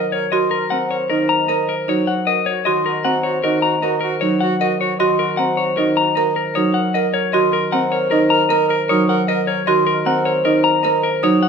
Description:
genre	classical, minimalist pattern music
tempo	154 BPM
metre	6/4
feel	straight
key	Eb dorian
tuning	A4 = 439 Hz
part	clean electric guitar	melody	0.0-11.5 s	Bb4 to Bb5	-20 LUFS	left 8 dB	none
part	mellow soprano saxophone	second line	0.0-11.5 s	Gb4 to Bb4	-26 LUFS	right 6 dB	none
part	Celtic harp	accompaniment	0.0-11.5 s	Eb3 to C4	-22 LUFS	right 1 dB	none
part	buzzing marimba with medium hard mallets	arpeggios	0.0-11.5 s	C4 to Bb4	-21 LUFS	right 7 dB	none
part	celesta	arpeggios	0.0-11.5 s	Eb5 to Eb6	-24 LUFS	equal	none
room	wet large studio reverb, RT60 1.3 s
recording	none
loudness	-15 LUFS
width	side -6 dB against mid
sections	0.0-11.5 A section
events	none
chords	0.0 Ebm7

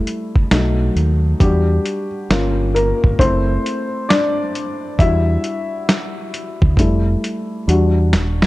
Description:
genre	lo-fi hip hop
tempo	67 BPM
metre	4/4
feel	swing 65% on 16ths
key	E minor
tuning	A4 = 440 Hz
part	dark upright piano	accompaniment	0.0-8.5 s	F#3 to E5	-19 LUFS	left 2 dB	low-pass filter
part	lo-fi sampler-style drum kit	drums	0.1-8.5 s	hi-hat, kick drum, snare drum	-18 LUFS	equal	overdrive, vintage 12-bit sampler grit
part	deep dub fingered electric bass	bass	0.5-8.5 s	D#1 to E2	-17 LUFS	equal	none
room	light reverb, digital ambience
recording	dark, warm production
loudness	-15 LUFS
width	side -18 dB against mid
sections	0.0-8.5 A section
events	upright piano solo 0.0-8.5; drum fill 6.8-8.5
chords	0.0 Fmaj9 (rootless); 0.5 B7; 1.4 Em9; 2.3 Gm7b5; 3.2 F#m7b5; 5.0 Em9; 6.8 Fmaj9; 7.7 Em9

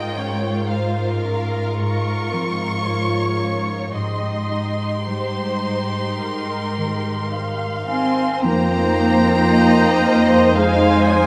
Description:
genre	cinematic, emotional film score for orchestra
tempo	52-59 BPM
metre	4/4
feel	rubato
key	unclear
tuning	A4 = 440 Hz
part	rich symphonic violin section	melody	0.0-11.3 s	F5 to Db6	-30 LUFS	equal	none
part	rich symphonic violin section	second line	0.0-11.3 s	Eb4 to F5	-30 LUFS	equal	none
part	warm symphonic viola section	accompaniment	0.0-11.3 s	C4 to F5	-27 LUFS	equal	none
part	concert harp	arpeggios	0.0-11.3 s	Ab2 to C6	-29 LUFS	equal	none
part	rich symphonic cello section	bass	0.0-11.3 s	Ab2 to C4	-25 LUFS	equal	none
part	mellow concert flute	second line	7.9-11.3 s	F5 to Ab5	-27 LUFS	equal	none
part	dark French horn section	sustained chords	7.9-11.3 s	Ab3 to C4	-23 LUFS	equal	none
part	warm clarinet	second line	8.4-11.3 s	Eb4	-27 LUFS	equal	none
part	warm oboe	second line	8.4-11.3 s	C5	-26 LUFS	equal	none
part	rich symphonic double bass section	bass	8.4-11.3 s	F2	-24 LUFS	equal	none
room	moderate scoring stage reverb, RT60 1.6 s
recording	none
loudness	-19 LUFS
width	mono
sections	0.0-8.4 A section; 8.4-11.3 B section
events	none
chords	0.0 Bbm/Ab; 3.9 Eb6/Ab; 8.4 Fm7

